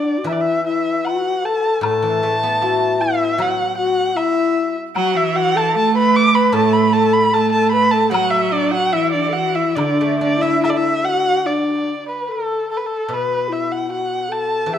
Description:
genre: chinese traditional, Chinese chamber ensemble.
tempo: 76 BPM.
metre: 4/4.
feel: rubato.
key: unclear.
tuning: A4 = 440 Hz.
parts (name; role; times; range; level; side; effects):
dark erhu; melody; 0.0-14.8 s; A4 to D6; -19 LUFS; right 1 dB; none.
low xiao; second line; 0.0-14.8 s; D4 to B4; -20 LUFS; left 5 dB; none.
guzheng; accompaniment; 0.0-14.8 s; A2 to D5; -25 LUFS; equal; none.
woodblock; percussion; 0.3-10.8 s; none; -29 LUFS; left 3 dB; none.
bright cello; second line; 4.9-11.0 s; D3 to A3; -20 LUFS; right 8 dB; none.
room: moderate recital hall reverb, RT60 1.6 s.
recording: minimal, uncompressed stereo recording.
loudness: -15 LUFS.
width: side -9 dB against mid.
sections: 0.0-11.5 A section; 11.5-14.8 B section.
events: none.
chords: none.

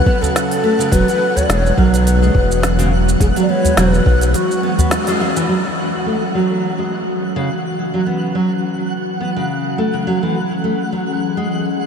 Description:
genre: organic downtempo.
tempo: 105 BPM.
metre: 4/4.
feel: swing 55% on 16ths.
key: unclear.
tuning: A4 = 440 Hz.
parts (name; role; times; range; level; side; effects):
breathy mellow ney; melody; 0.0-5.2 s; F#4 to D5; -21 LUFS; left 2 dB; tape echo.
ethereal airy pad; sustained chords; 0.0-11.9 s; E3 to G#4; -21 LUFS; equal; ensemble chorus, built-in reverb, sidechain pumping.
twinkling granular texture; texture; 0.0-11.9 s; F#5; -27 LUFS; right 1 dB; built-in reverb, ensemble chorus.
nylon-string guitar; arpeggios; 0.1-11.9 s; C#3 to B3; -20 LUFS; right 1 dB; low-pass filter, tape echo.
electronic kick drum; drums; 0.1-4.2 s; none; -16 LUFS; equal; overdrive.
organic electronic drum kit; drums; 0.2-5.5 s; hi-hat, shaker, snare drum; -23 LUFS; equal; overdrive, low-pass filter on perc, low-pass filter on hats, low-pass filter on snare.
udu; percussion; 0.2-4.9 s; none; -19 LUFS; equal; none.
round analog bass; bass; 0.9-4.3 s; E1 to B1; -15 LUFS; equal; sidechain pumping.
room: wet huge ambient reverb, RT60 7.8 s.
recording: dreamy mix soaked in reverb.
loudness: -14 LUFS.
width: side -7 dB against mid.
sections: 0.0-5.5 A section; 5.5-11.9 B section.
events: break 4.3-5.5; band accent 4.9; filter sweep on ambient pad 5.5-11.9.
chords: 0.0 F#madd11; 0.9 Eadd9; 5.5 F#7(no3).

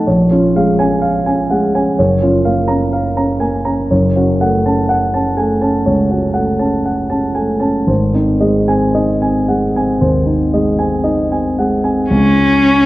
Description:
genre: classical, romantic duo for cello and grand piano.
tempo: 56-63 BPM.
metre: 4/4.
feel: rubato.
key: unclear.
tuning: A4 = 439 Hz.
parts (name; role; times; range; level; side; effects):
dark concert grand piano; accompaniment; 0.0-12.9 s; Gb1 to Bb5; -12 LUFS; equal; none.
rich cello; melody; 12.1-12.9 s; Db4; -10 LUFS; left 1 dB; none.
room: moderate scoring stage reverb, RT60 1.8 s.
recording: worn, warbling old tape, cassette tape, warbly pitch drift.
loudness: -12 LUFS.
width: side -17 dB against mid.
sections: 0.0-12.1 A section.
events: none.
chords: 0.1 Bbm7; 2.0 Gbmaj7; 3.9 Gbm; 7.9 Ab; 12.1 N.C..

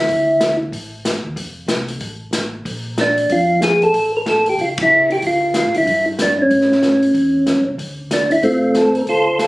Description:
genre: soul jazz organ trio.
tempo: 187 BPM.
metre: 4/4.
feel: swing 61% on 8ths.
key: D minor.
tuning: A4 = 436 Hz.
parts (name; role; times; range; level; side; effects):
percussive tonewheel organ; melody; 0.0-0.6, 3.0-9.5 s; A3 to C5; -14 LUFS; equal; slow rotary speaker, plate reverb.
mellow tonewheel organ; bass; 0.0-9.5 s; F1 to D3; -29 LUFS; equal; slow rotary speaker.
open jazz drum kit; drums; 0.1-9.5 s; hi-hat, kick drum, ride cymbal, snare drum; -23 LUFS; left 1 dB; none.
room: moderate club reverb, RT60 0.6 s.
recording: recorded on a phone in the room, studio reverb, compression.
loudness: -14 LUFS.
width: side -19 dB against mid.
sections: 0.0-7.8 A section; 7.8-9.5 A section.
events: band accent 4.7.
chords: 0.1 Dm7; 2.7 Bb; 3.9 A; 5.2 Dm; 5.9 C#dim/G; 6.5 A7; 7.8 Dm7.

